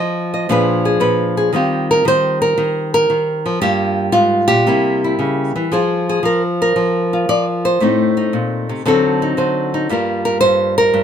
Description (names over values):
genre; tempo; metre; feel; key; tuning
solo jazz; 115 BPM; 4/4; swing 69% on 8ths; Eb major; A4 = 439 Hz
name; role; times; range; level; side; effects
nylon-string guitar; solo; 0.0-11.0 s; G2 to Eb5; -14 LUFS; equal; none
room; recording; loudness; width
little or no reverb; close, detailed microphones; -14 LUFS; side -8 dB against mid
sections
0.0-1.5 A section; 1.5-11.0 B section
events
nylon-string guitar solo 0.0-1.5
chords
0.5 Bb7b9; 1.5 Eb69; 3.6 Gm7; 4.7 C7b9; 5.7 Fmadd11; 7.8 Adim; 8.8 D7b9; 9.9 Gm7